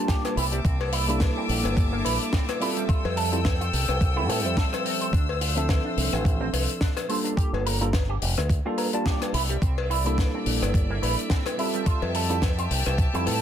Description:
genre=nu-disco, nu disco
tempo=107 BPM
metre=4/4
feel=swing 56% on 16ths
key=unclear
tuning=A4 = 441 Hz
part: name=tine electric piano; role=accompaniment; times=0.0-13.4 s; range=F3 to A5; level=-30 LUFS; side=right 1 dB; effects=wide subtle chorus, sidechain pumping, analog delay
part: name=electric guitar with an envelope filter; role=riff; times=0.1-13.4 s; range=G3 to C5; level=-33 LUFS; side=right 6 dB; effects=analog chorus
part: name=electronic kick drum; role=drums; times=0.1-13.1 s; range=none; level=-23 LUFS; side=equal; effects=none
part: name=tight funk drum kit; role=drums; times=0.1-13.4 s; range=hi-hat, rim click, snare drum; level=-30 LUFS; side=left 3 dB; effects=none
part: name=cowbell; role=percussion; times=0.2-13.4 s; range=none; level=-34 LUFS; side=left 5 dB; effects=none
part: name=clear studio string section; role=sustained chords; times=0.4-13.4 s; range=Bb3 to E6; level=-32 LUFS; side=left 2 dB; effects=sidechain pumping
part: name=fingered electric bass with an envelope filter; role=bass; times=0.4-13.4 s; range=F1 to A2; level=-27 LUFS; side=equal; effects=none
room=light reverb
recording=dense, heavily limited modern master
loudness=-22 LUFS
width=side -10 dB against mid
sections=0.0-13.4 A section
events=none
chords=0.4 C13; 2.9 Fmaj9; 5.1 Dm9; 7.1 Gm9; 9.3 C13; 11.9 Fmaj9

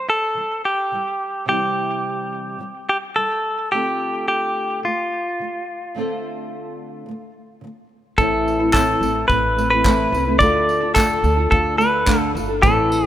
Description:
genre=acoustic pop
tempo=108 BPM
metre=4/4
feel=straight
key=unclear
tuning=A4 = 440 Hz
part: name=direct-recorded clean electric guitar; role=melody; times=0.0-13.1 s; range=F4 to D5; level=-19 LUFS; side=equal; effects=tape echo
part: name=nylon-string guitar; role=accompaniment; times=0.0-13.0 s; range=A2 to C5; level=-23 LUFS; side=equal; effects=double-tracked left and right
part: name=upright bass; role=bass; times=8.2-13.1 s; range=G1 to D2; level=-25 LUFS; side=equal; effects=none
part: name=modern studio drum kit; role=drums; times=8.2-13.0 s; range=handclaps, kick drum, tambourine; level=-21 LUFS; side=equal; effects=none
part: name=tambourine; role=percussion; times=8.2-12.8 s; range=none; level=-37 LUFS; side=left 3 dB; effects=none
room=moderate lush hall reverb, RT60 2.3 s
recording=rough home demo mix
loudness=-17 LUFS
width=side -12 dB against mid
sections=0.0-8.2 A section; 8.2-13.1 B section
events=none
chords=0.0 C; 3.7 Dm7; 8.2 Amadd9; 10.4 Dm

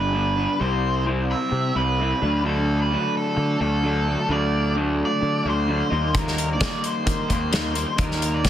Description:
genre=indie rock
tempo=130 BPM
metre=4/4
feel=straight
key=unclear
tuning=A4 = 436 Hz
part: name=octave-fuzz lead guitar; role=melody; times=0.0-8.5 s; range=A4 to E5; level=-26 LUFS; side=right 2 dB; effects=distortion, digital delay
part: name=electric guitar through a small old amp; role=riff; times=0.0-8.5 s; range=G2 to E4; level=-25 LUFS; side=left 1 dB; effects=warbly pitch drift
part: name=fuzz fingered electric bass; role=bass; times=0.0-8.5 s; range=G1 to Eb3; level=-25 LUFS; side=equal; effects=overdrive
part: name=loose indie drum kit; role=drums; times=6.1-8.5 s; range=hi-hat, kick drum, snare drum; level=-24 LUFS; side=equal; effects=none
room=small room reverb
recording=dense, heavily limited modern master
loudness=-20 LUFS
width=side -11 dB against mid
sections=0.0-8.5 A section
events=none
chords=0.0 G; 0.6 C; 2.2 D; 5.9 Eb

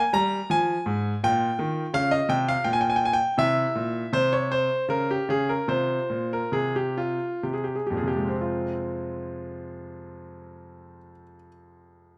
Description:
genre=classical, baroque-style suite movement for grand piano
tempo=60-84 BPM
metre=3/4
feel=rubato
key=F minor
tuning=A4 = 440 Hz
part: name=clear grand piano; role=solo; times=0.0-12.2 s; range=F2 to Bb5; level=-26 LUFS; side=equal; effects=none
room=moderate stone room reverb, RT60 1.4 s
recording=close, detailed microphones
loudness=-25 LUFS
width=mono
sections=0.0-8.4 A section; 8.4-12.2 B section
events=slowing down 2.3-8.4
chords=0.5 Fm; 1.2 Gm7/Bb; 3.4 C; 4.9 N.C.; 5.7 F5; 7.4 Abmaj9; 8.4 Fm

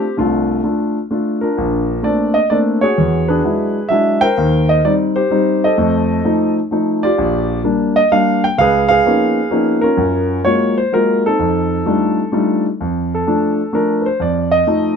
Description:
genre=jazz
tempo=128 BPM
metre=3/4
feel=swing 67% on 8ths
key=unclear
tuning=A4 = 439 Hz
part: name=warm grand piano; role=solo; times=0.0-15.0 s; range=Bb1 to G5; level=-13 LUFS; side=equal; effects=none
room=moderate club reverb, RT60 0.6 s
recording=minimal, uncompressed stereo recording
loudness=-13 LUFS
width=side -6 dB against mid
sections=0.0-1.6 A section; 1.6-12.8 B section; 12.8-15.0 C section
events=grand piano solo 12.8-15.0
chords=0.0 F6; 1.6 Bbmaj9; 3.0 E9; 4.4 Eb6; 5.8 F7; 7.2 Bb6; 8.6 Db13; 10.0 Gbmaj9; 11.4 F13; 12.8 F6; 14.2 F7

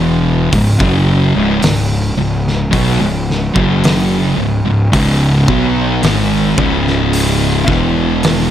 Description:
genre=stoner and doom metal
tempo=55 BPM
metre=4/4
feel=straight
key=C# minor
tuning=A4 = 440 Hz
part: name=fuzz guitar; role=riff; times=0.0-8.5 s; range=C#2 to B3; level=-13 LUFS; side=equal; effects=distortion
part: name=fuzz fingered electric bass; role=bass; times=0.0-8.5 s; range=C#1 to B1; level=-17 LUFS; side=equal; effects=overdrive
part: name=oversized low-tuned drum kit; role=drums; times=0.5-8.5 s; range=hi-hat, kick drum, snare drum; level=-18 LUFS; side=equal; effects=none
room=small room ambience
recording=none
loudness=-11 LUFS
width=side -10 dB against mid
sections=0.0-8.5 A section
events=none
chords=0.0 E5; 0.5 C#5; 7.7 E5

